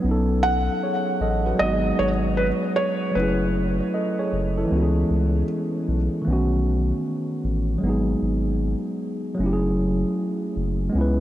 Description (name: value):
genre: lo-fi hip hop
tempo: 77 BPM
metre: 4/4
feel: swing 63% on 16ths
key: F# dorian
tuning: A4 = 441 Hz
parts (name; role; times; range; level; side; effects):
- mellow tine electric piano; accompaniment; 0.0-11.2 s; D#3 to D#5; -23 LUFS; equal; none
- saturated sub bass; bass; 0.0-11.2 s; F#1 to C#2; -24 LUFS; equal; none
- felt-muted upright piano; melody; 0.4-5.4 s; B4 to F#5; -25 LUFS; right 2 dB; diffuse ambient delay
room: moderate huge ambient reverb, RT60 7.7 s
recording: dreamy mix soaked in reverb, cassette tape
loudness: -20 LUFS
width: side -13 dB against mid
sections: 0.0-11.2 A section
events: none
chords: 0.0 B9; 1.6 G#m7; 3.1 F#m9; 4.7 C#m7; 6.3 B9; 7.8 G#m7; 9.4 F#m9